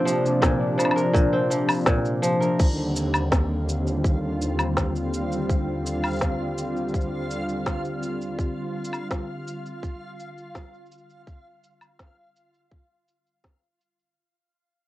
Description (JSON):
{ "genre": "folktronica", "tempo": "83 BPM", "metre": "4/4", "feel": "straight", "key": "Eb major", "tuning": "A4 = 438 Hz", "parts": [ { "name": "warm analog pad", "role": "sustained chords", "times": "0.0-14.2 s", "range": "Eb2 to F4", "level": "-26 LUFS", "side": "equal", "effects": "chorus, tremolo, cassette tape" }, { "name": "kora", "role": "arpeggios", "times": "0.0-3.7 s", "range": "Bb2 to Bb4", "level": "-24 LUFS", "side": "equal", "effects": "cassette tape, tape echo" }, { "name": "organic electronic drum kit", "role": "drums", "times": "0.1-14.1 s", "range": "crash cymbal, shaker, snare drum, woodblock", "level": "-27 LUFS", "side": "equal", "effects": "low-pass filter on snare, cassette tape, low-pass filter on perc, low-pass filter on cymbals, low-pass filter on room" }, { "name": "electronic kick drum", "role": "drums", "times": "0.4-13.6 s", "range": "none", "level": "-24 LUFS", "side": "equal", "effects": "cassette tape" }, { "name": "backwards swelling texture", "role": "texture", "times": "3.6-14.2 s", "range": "F4 to F5", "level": "-37 LUFS", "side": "equal", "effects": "built-in reverb, cassette tape" } ], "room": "moderate booth ambience, RT60 0.2 s", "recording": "home recording on cassette", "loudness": "-22 LUFS", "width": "side -16 dB against mid", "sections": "0.0-2.6 A section; 2.6-14.2 B section", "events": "fade-out 2.6-14.2", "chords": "0.0 Bbadd9; 2.6 Eb; 8.4 G7sus4/D" }